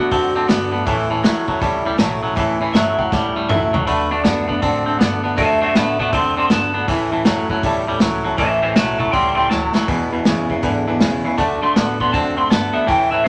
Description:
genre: rockabilly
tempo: 160 BPM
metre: 4/4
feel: swing 64% on 8ths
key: A mixolydian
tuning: A4 = 440 Hz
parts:
  - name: electric guitar through a small old amp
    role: melody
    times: 0.0-13.3 s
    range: D4 to C6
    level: -22 LUFS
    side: equal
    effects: none
  - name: picked steel-string acoustic guitar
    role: accompaniment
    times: 0.0-13.3 s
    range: E2 to F#4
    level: -28 LUFS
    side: equal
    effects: none
  - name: warm upright piano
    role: accompaniment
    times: 0.0-13.3 s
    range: B4 to B5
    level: -29 LUFS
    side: equal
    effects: none
  - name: twangy electric guitar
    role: riff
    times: 0.0-13.3 s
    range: E2 to C4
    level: -23 LUFS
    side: equal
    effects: none
  - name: upright bass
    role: bass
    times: 0.0-13.3 s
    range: G1 to A2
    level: -33 LUFS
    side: equal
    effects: none
  - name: vintage drum kit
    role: drums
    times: 0.1-13.0 s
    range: hi-hat, kick drum, snare drum, toms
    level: -23 LUFS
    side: equal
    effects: none
room: moderate club reverb, RT60 0.7 s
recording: none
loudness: -18 LUFS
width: mono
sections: 0.0-13.3 A section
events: drum fill 3.1-3.9, 9.5-9.9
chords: 0.0 D; 0.9 A; 3.9 D; 6.9 A; 9.9 E; 11.4 D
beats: 0.11 0.49 | 0.86 1.24 1.62 1.99 | 2.37 2.75 3.12 3.50 | 3.87 4.25 4.62 5.00 | 5.38 5.75 6.13 6.50 | 6.88 7.25 7.63 8.01 | 8.38 8.76 9.13 9.51 | 9.88 10.26 10.63 11.01 | 11.38 11.76 12.13 12.51 | 12.88 13.26

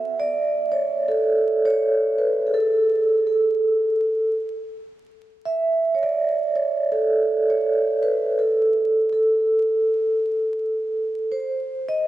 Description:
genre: hip hop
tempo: 82 BPM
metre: 4/4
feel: swing 57% on 16ths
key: unclear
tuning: A4 = 440 Hz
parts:
  - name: vibraphone with soft mallets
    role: solo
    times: 0.0-12.1 s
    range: G#4 to E5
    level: -19 LUFS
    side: right 1 dB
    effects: cassette tape, analog delay
room: wet plate reverb, RT60 2.6 s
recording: dreamy mix soaked in reverb, vinyl crackle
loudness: -19 LUFS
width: side -14 dB against mid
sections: 0.0-12.1 A section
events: vibraphone solo 0.0-12.1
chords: none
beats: 0.33 1.06 1.80 | 2.53 3.26 3.99 4.72 | 5.45 6.19 6.92 7.65 | 8.38 9.11 9.84 10.58 | 11.31 12.04

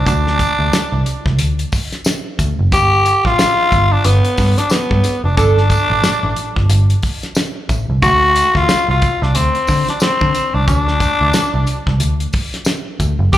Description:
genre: funk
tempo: 90 BPM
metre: 4/4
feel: swing 60% on 16ths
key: unclear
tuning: A4 = 442 Hz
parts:
  - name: growling tenor saxophone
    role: melody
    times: 0.0-13.4 s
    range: B3 to G4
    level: -15 LUFS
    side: left 1 dB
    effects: slapback echo
  - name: vintage muted picked electric bass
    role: bass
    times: 0.0-13.4 s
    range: F1 to D3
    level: -15 LUFS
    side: equal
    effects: none
  - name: damped 70s drum kit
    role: drums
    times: 0.1-13.4 s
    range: hi-hat, kick drum, snare drum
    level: -19 LUFS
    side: equal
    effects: none
  - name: tambourine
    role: percussion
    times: 0.1-13.4 s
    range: none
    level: -30 LUFS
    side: left 3 dB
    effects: none
  - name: bright trombone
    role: second line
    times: 5.4-5.6 s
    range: A4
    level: -19 LUFS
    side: right 5 dB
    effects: slapback echo
room: light reverb, small room ambience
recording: live gig heard through the venue's PA, club reverb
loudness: -12 LUFS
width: side -13 dB against mid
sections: 0.0-13.4 A section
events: band accent 5.4-8.0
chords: 0.0 N.C.; 2.7 G5; 8.0 D7(no3)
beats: | 0.07 0.73 1.39 2.06 | 2.72 3.38 4.05 4.71 | 5.37 6.04 6.70 7.36 | 8.03 8.69 9.35 10.02 | 10.68 11.34 12.01 12.67 | 13.33

